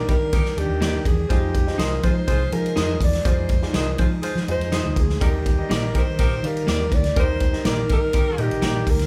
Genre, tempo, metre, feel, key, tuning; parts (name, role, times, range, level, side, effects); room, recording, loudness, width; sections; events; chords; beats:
uptempo 1960s-style soul; 123 BPM; 4/4; straight; Eb major; A4 = 440 Hz
breathy alto saxophone; melody; 0.0-9.1 s; G4 to D5; -29 LUFS; equal
clear grand piano; accompaniment; 0.0-8.9 s; Eb3 to F5; -34 LUFS; equal
percussive tonewheel organ; sustained chords; 0.0-9.1 s; Eb3 to D5; -36 LUFS; equal
bright saxophone section; second line; 0.1-8.5 s; G3 to C5; -34 LUFS; equal
vintage muted fingered electric bass; bass; 0.1-9.1 s; Bb1 to F3; -28 LUFS; equal
natural country drum kit; drums; 0.1-9.1 s; hi-hat, kick drum, ride cymbal, snare drum; -24 LUFS; equal
clean electric guitar; stabs; 0.8-8.8 s; Bb3 to Eb5; -32 LUFS; equal
light reverb; band playing live in one room; -21 LUFS; mono
0.0-9.1 A section
0.0 Ebmaj7; 1.3 Fm7; 5.2 Ebmaj7
0.32 0.81 | 1.30 1.79 2.28 2.77 | 3.25 3.74 4.23 4.72 | 5.21 5.70 6.19 6.68 | 7.17 7.65 8.14 8.63